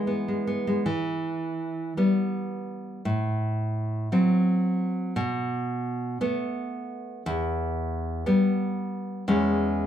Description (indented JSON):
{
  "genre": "romantic piece for solo classical guitar",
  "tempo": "49-61 BPM (dotted quarters)",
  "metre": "6/8",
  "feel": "rubato",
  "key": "E minor",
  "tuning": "A4 = 436 Hz",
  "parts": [
    { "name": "nylon-string guitar", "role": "solo", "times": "0.0-9.9 s", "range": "E2 to E4", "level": "-24 LUFS", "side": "equal", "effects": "none" }
  ],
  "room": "moderate large studio reverb, RT60 0.8 s",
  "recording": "band playing live in one room",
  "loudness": "-24 LUFS",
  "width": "side -10 dB against mid",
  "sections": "0.9-9.9 A section",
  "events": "none",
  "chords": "0.0 E; 0.9 Em; 3.0 F#dim/A; 5.2 Asus2/B; 7.3 Em; 9.3 C#m/E",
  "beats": "| 0.85 1.96 | 3.04 4.10 | 5.16 6.21 | 7.26 8.27 | 9.28"
}